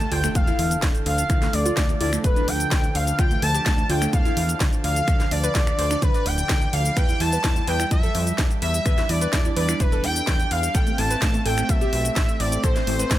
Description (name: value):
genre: progressive house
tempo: 127 BPM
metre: 4/4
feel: straight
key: D dorian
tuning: A4 = 438 Hz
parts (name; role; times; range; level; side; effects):
- expressive portamento lead; melody; 0.0-13.2 s; B4 to A5; -27 LUFS; equal; lush chorus, sidechain pumping, tape echo
- soft supersaw; second line; 0.0-13.2 s; B4 to A5; -31 LUFS; equal; sidechain pumping, tape echo
- warm analog pad; sustained chords; 0.0-13.2 s; D3 to A4; -32 LUFS; right 2 dB; chorus, sidechain pumping
- soft round pluck; arpeggios; 0.0-13.2 s; A3 to D5; -30 LUFS; equal; wide subtle chorus, sidechain pumping, tape echo
- plucky analog bass; bass; 0.0-13.2 s; D1 to F2; -26 LUFS; equal; sidechain pumping
- house drum kit; drums; 0.0-13.2 s; cabasa, finger snaps, hi-hat, snare drum; -28 LUFS; equal; sidechain pumping on hats, sidechain pumping on perc, sidechain pumping on cymbals
- sub drop; sound effects; 0.1-1.3 s; none; -38 LUFS; equal; none
- electronic kick drum; drums; 0.4-13.2 s; none; -22 LUFS; equal; none
room: little or no reverb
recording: none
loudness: -19 LUFS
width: side -14 dB against mid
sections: 0.0-13.2 A section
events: impact 0.0-1.3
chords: 0.0 Dmadd9; 7.0 Em; 10.7 Amadd9